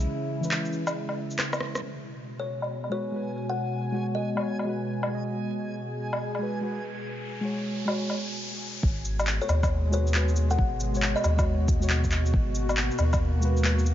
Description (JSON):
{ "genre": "future garage", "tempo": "137 BPM", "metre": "4/4", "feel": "swing 65% on 16ths", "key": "G# minor", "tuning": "A4 = 440 Hz", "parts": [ { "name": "warbly tape-like pad", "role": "sustained chords", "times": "0.0-13.9 s", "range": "B2 to G#4", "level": "-33 LUFS", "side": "equal", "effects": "chorus, built-in reverb, sidechain pumping" }, { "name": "soft dub sub bass", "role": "bass", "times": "0.0-0.1, 8.8-13.9 s", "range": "G#1 to D#2", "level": "-25 LUFS", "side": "equal", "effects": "sidechain pumping" }, { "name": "electronic shaker, handclaps, woodblock, rim click and cabasa", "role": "drums", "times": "0.0-13.9 s", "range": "none", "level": "-30 LUFS", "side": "left 1 dB", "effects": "low-pass filter on perc, low-pass filter on snare, low-pass filter on room" }, { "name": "muted felt-like synth keys", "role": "accompaniment", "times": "0.4-13.8 s", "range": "E3 to D#5", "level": "-33 LUFS", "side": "equal", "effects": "chorus, sidechain pumping, tape echo" }, { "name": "backwards swelling texture", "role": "texture", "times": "3.1-8.4 s", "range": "G#5", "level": "-42 LUFS", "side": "right 1 dB", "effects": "built-in reverb" }, { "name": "kalimba", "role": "melody", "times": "2.4-4.6, 9.4-11.6 s", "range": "C#5 to F#5", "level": "-34 LUFS", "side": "left 2 dB", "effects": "dub echo" }, { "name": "riser", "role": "sound effects", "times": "6.2-8.8 s", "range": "none", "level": "-38 LUFS", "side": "equal", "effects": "none" }, { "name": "electronic kick drum", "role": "drums", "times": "8.8-13.2 s", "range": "none", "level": "-26 LUFS", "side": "equal", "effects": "none" } ], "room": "light reverb", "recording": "vinyl crackle, nothing above 7.4 kHz", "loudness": "-25 LUFS", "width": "side -12 dB against mid", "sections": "0.0-1.8 A section; 1.8-8.8 B section; 8.8-13.9 C section", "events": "break 0.1-1.8, 8.4-8.8; drum fill 1.4-1.8; filter sweep on ambient pad 1.8-8.8; riser 6.2-8.8", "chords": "0.0 E6; 1.8 G#m7" }